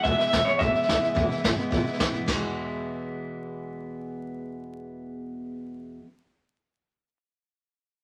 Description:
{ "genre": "rockabilly", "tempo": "215 BPM", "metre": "4/4", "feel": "straight", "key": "E major", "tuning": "A4 = 440 Hz", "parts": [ { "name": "electric guitar through a small old amp", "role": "melody", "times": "0.0-2.0 s", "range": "C#5 to E5", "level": "-27 LUFS", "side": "equal", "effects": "tremolo" }, { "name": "picked steel-string acoustic guitar", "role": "accompaniment", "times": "0.0-6.1 s", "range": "E2 to E4", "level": "-34 LUFS", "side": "equal", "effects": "none" }, { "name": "upright bass", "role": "bass", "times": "0.0-6.0 s", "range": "E1 to C#2", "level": "-36 LUFS", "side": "equal", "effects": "none" }, { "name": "jazz brush drum kit", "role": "drums", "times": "0.0-2.3 s", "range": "china cymbal, hi-hat, kick drum, snare drum", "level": "-30 LUFS", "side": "equal", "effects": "none" } ], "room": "moderate studio reverb, RT60 0.8 s", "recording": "vinyl crackle", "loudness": "-26 LUFS", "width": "mono", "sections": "0.0-2.3 A section; 2.3-4.5 B section", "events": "none", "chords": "0.0 E", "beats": "| 0.05 0.33 0.60 0.89 | 1.16 1.44 1.72 2.00 | 2.28 2.56 2.84 3.12 | 3.40 3.68 3.96 4.23" }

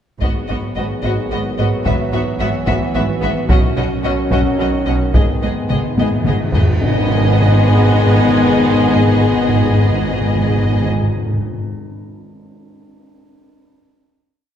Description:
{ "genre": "cinematic, epic orchestral film score", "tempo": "73 BPM (dotted quarters)", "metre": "6/8", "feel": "straight", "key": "G# minor", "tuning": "A4 = 439 Hz", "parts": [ { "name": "rich symphonic violin section", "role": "melody", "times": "0.2-10.9 s", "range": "D#5 to E5", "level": "-25 LUFS", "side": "left 3 dB", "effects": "none" }, { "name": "warm symphonic violin section", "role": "second line", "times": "0.2-10.9 s", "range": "F#4 to G#4", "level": "-25 LUFS", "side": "left 4 dB", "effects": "none" }, { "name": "rich symphonic viola section", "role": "accompaniment", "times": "0.2-10.9 s", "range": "B3 to C#4", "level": "-24 LUFS", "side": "right 2 dB", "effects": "none" }, { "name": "clear trombone section", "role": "sustained chords", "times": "0.2-10.9 s", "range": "D#3 to G#3", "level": "-24 LUFS", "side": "right 1 dB", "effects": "none" }, { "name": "mellow French horn section", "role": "sustained chords", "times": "0.2-10.9 s", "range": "B3 to G#4", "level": "-21 LUFS", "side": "left 3 dB", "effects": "none" }, { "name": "rich symphonic cello section", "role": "bass", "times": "0.2-10.9 s", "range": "G#2 to B2", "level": "-22 LUFS", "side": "right 2 dB", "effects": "none" }, { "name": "rich symphonic double bass section", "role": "bass", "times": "0.2-10.9 s", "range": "G#1 to B1", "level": "-20 LUFS", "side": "right 2 dB", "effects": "none" }, { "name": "taiko ensemble", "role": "drums", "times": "0.2-6.8 s", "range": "none", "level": "-18 LUFS", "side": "equal", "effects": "none" }, { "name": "timpani", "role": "percussion", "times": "0.2-1.0, 5.1-11.5 s", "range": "G#2", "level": "-20 LUFS", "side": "equal", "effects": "none" }, { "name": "cymbal swell and tam-tam", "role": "percussion", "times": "3.5-9.0 s", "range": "none", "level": "-27 LUFS", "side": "left 2 dB", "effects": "none" } ], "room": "wet scoring stage reverb, RT60 1.7 s", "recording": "heard from further back in the room", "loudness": "-13 LUFS", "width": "side -9 dB against mid", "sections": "0.2-6.8 theme; 6.8-10.1 final chord", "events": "timpani fill 5.1-6.8; drum fill 6.0-6.8; band accent 6.8-7.4", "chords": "0.2 G#m7; 1.9 Eadd9/G#; 3.5 Badd9; 5.1 G#m", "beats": "| 0.21 1.04 | 1.86 2.68 | 3.49 4.31 | 5.14 5.98 | 6.81 7.63 | 8.45 9.27" }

